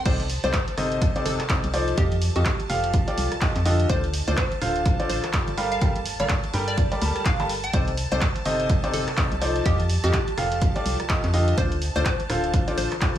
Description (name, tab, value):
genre	piano house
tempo	125 BPM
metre	4/4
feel	swing 59% on 16ths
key	C dorian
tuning	A4 = 440 Hz
part	hollow square pluck	melody	0.0-12.9 s	G4 to G5	-31 LUFS	equal	analog chorus, dub echo
part	string machine, violins	sustained chords	0.0-13.2 s	A5	-37 LUFS	right 1 dB	ensemble chorus, vintage 12-bit sampler grit, sidechain pumping
part	clear upright piano	riff	0.1-13.2 s	C3 to A5	-26 LUFS	equal	vintage 12-bit sampler grit, sidechain pumping, dub echo
part	organ-like FM bass	bass	0.1-13.2 s	D1 to G2	-26 LUFS	equal	tube saturation, sidechain pumping
part	electronic kick drum	drums	0.1-13.1 s	none	-24 LUFS	equal	none
part	punchy analog drum machine	drums	0.1-13.2 s	crash cymbal, handclaps, hi-hat, rim click	-30 LUFS	right 1 dB	none
room	digital ambience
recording	small room ambience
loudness	-21 LUFS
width	side -11 dB against mid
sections	0.1-13.2 A section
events	drop 0.1-13.2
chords	0.1 Cm69; 2.0 F9; 3.9 Dm7; 5.6 Gm9; 7.7 Cm69; 9.7 F9; 11.6 Dm7